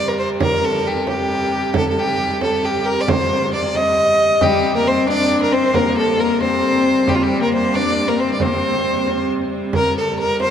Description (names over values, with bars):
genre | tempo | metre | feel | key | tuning
medieval dance | 90 BPM (dotted quarters) | 6/8 | straight | unclear | A4 = 445 Hz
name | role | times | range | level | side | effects
clear fiddle | melody | 0.0-10.5 s | F4 to Eb5 | -18 LUFS | equal | none
clear hurdy-gurdy | drone | 0.0-10.5 s | C3 to G3 | -25 LUFS | right 2 dB | none
frame drum | percussion | 0.4-10.5 s | none | -24 LUFS | right 3 dB | none
warm viola da gamba | second line | 4.4-9.3 s | G3 to D4 | -19 LUFS | left 3 dB | none
room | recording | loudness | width
wet cathedral reverb, RT60 4.1 s | dark, warm production | -15 LUFS | side -8 dB against mid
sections
0.0-9.7 A section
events
none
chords
none